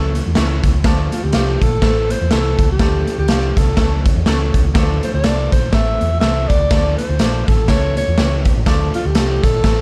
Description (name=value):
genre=uptempo 1960s-style soul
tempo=123 BPM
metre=4/4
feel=swing 58% on 8ths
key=D minor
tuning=A4 = 440 Hz
part: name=warm alto saxophone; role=melody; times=0.0-9.8 s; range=F4 to E5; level=-23 LUFS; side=equal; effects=none
part: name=bright upright piano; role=accompaniment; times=0.0-9.8 s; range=E3 to A4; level=-27 LUFS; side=equal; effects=none
part: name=hollow-body short-scale fingered electric bass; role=bass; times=0.0-9.8 s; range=A1 to E2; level=-21 LUFS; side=equal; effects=none
part: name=raw garage drum kit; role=drums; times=0.1-9.8 s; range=hi-hat, kick drum, snare drum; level=-19 LUFS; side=equal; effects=none
room=light reverb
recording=dark, warm production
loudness=-16 LUFS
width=mono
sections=0.0-9.8 A section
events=none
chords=0.0 A/C#; 0.8 Dm; 1.8 Am; 2.8 Dm; 3.8 A/C#; 4.8 Dm; 5.7 Am; 6.7 Dm; 7.7 A/C#; 8.7 Dm